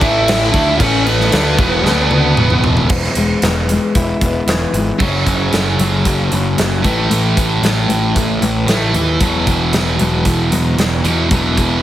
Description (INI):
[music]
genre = quiet-loud alternative rock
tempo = 114 BPM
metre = 4/4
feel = straight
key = E mixolydian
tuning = A4 = 443 Hz
[part]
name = bluesy overdriven lead guitar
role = melody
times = 0.0-2.6 s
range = B3 to E5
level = -17 LUFS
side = left 1 dB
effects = distortion, slapback echo
[part]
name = sludgy distorted guitar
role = riff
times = 0.0-11.8 s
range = E2 to D4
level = -16 LUFS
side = right 1 dB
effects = overdrive
[part]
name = fuzz picked electric bass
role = bass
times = 0.0-11.8 s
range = E1 to E2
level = -18 LUFS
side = equal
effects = overdrive
[part]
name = big rock drum kit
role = drums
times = 0.0-11.7 s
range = crash cymbal, hi-hat, kick drum, snare drum, toms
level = -18 LUFS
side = equal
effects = none
[part]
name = fingerpicked steel-string acoustic guitar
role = arpeggios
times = 2.9-11.8 s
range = E2 to E4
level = -20 LUFS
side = left 2 dB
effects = none
[sound]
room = moderate studio reverb, RT60 0.8 s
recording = heavily compressed radio sound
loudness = -12 LUFS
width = side -12 dB against mid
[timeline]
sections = 0.0-2.9 A section; 2.9-5.0 B section; 5.0-11.8 C section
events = drum fill 1.8-2.9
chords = 0.0 A5; 0.5 Dsus2; 0.8 A5; 1.3 E5; 1.8 D5; 2.4 E5; 2.9 E; 5.0 F#5; 6.8 A5; 9.2 Esus2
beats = 0.27 | 0.80 1.32 1.85 2.37 | 2.90 3.42 3.95 4.47 | 5.00 5.52 6.05 6.58 | 7.10 7.63 8.15 8.68 | 9.21 9.73 10.26 10.78 | 11.31